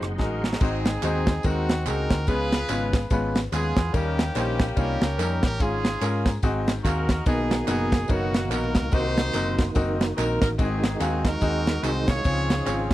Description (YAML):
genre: uptempo gospel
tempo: 144 BPM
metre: 4/4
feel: swing 59% on 8ths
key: unclear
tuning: A4 = 440 Hz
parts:
  - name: bright concert grand piano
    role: accompaniment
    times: 0.0-12.9 s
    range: Ab2 to Ab5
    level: -28 LUFS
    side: left 2 dB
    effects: none
  - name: tonewheel organ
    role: sustained chords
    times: 0.0-0.6, 7.3-12.9 s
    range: Cb3 to C6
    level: -31 LUFS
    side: right 2 dB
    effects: slow rotary speaker, overdrive, chorus vibrato
  - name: warm studio string section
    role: sustained chords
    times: 0.0-0.6 s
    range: Gb3 to Eb4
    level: -43 LUFS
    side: right 1 dB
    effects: none
  - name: hollow-body short-scale fingered electric bass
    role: bass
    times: 0.0-12.9 s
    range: Gb1 to Ab2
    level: -28 LUFS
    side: equal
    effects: none
  - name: tight funk drum kit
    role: drums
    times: 0.0-12.9 s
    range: crash cymbal, hi-hat, kick drum, ride cymbal, rim click, snare drum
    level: -24 LUFS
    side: equal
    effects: none
  - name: clear horn section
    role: melody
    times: 0.2-12.9 s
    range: Bb3 to Db5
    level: -29 LUFS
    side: equal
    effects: none
  - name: tambourine and handclaps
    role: percussion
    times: 0.6-12.8 s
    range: none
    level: -38 LUFS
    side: right 6 dB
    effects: none
room: little or no reverb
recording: dry, close 1970s-style studio recording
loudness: -21 LUFS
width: side -15 dB against mid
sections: 0.6-12.9 A section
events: grand piano fill 0.0-0.6, 12.7; drum fill 0.2-0.6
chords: 0.0 Ab7; 2.3 Db7; 3.9 Eb7; 5.6 Db/Ab; 6.4 Ab7; 7.3 Cbmaj7; 8.9 Cm7b5; 10.6 Ab7; 12.3 Dbmaj7